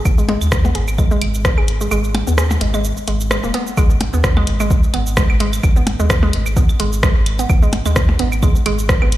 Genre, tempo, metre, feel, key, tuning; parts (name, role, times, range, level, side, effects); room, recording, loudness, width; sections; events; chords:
minimal techno; 129 BPM; 4/4; swing 55% on 16ths; G# minor; A4 = 439 Hz
saturated sub bass; bass; 0.1-9.2 s; D#1 to D#2; -18 LUFS; equal; sidechain pumping
electronic kick drum; drums; 0.1-9.0 s; -15 LUFS; equal
punchy analog drum machine; drums; 0.1-9.2 s; hi-hat, rim click, shaker; -23 LUFS; equal
claves and percussion blips; percussion; 0.1-9.1 s; -25 LUFS; equal; overdrive, ping-pong delay
hollow square pluck; riff; 0.2-9.1 s; G#3 to G#4; -22 LUFS; right 1 dB; chorus, phaser, sidechain pumping, ping-pong delay
light reverb, digital ambience; played on a big sound system in a bare room, large studio reverb; -14 LUFS; side -15 dB against mid
0.0-3.8 A section; 3.8-9.2 B section
kick drops out 1.9-3.8; drop 3.8-9.2
0.0 G#5